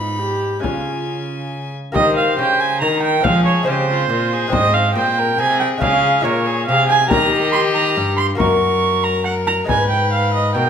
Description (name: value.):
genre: classical, renaissance-style consort dance.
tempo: 140 BPM.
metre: 3/4.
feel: straight.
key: Eb mixolydian.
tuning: A4 = 440 Hz.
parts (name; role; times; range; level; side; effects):
warm violin; melody; 0.0-10.7 s; F4 to Cb6; -23 LUFS; left 5 dB; none.
warm viola; second line; 0.0-10.7 s; Eb4 to Db6; -17 LUFS; right 3 dB; none.
lute; accompaniment; 0.0-10.7 s; Gb2 to Db5; -23 LUFS; left 2 dB; none.
rich cello; bass; 0.0-10.7 s; Gb2 to F3; -22 LUFS; equal; none.
frame drum; percussion; 0.6-9.9 s; none; -22 LUFS; left 4 dB; none.
room: moderate recital hall reverb, RT60 1.3 s.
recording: minimal, uncompressed stereo recording.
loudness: -14 LUFS.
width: side -7 dB against mid.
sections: 0.0-2.0 A section; 2.0-10.7 A section.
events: none.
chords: 0.0 Abm; 0.6 Db; 2.0 Eb; 3.2 Fm; 4.5 Ab; 5.8 Db; 7.1 Eb; 8.4 Gb; 9.7 Abm.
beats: 0.20 | 0.64 1.07 1.51 | 1.95 2.38 2.81 | 3.24 3.67 4.10 | 4.53 4.96 5.39 | 5.82 6.25 6.68 | 7.11 7.54 7.96 | 8.39 8.82 9.25 | 9.69 10.12 10.55.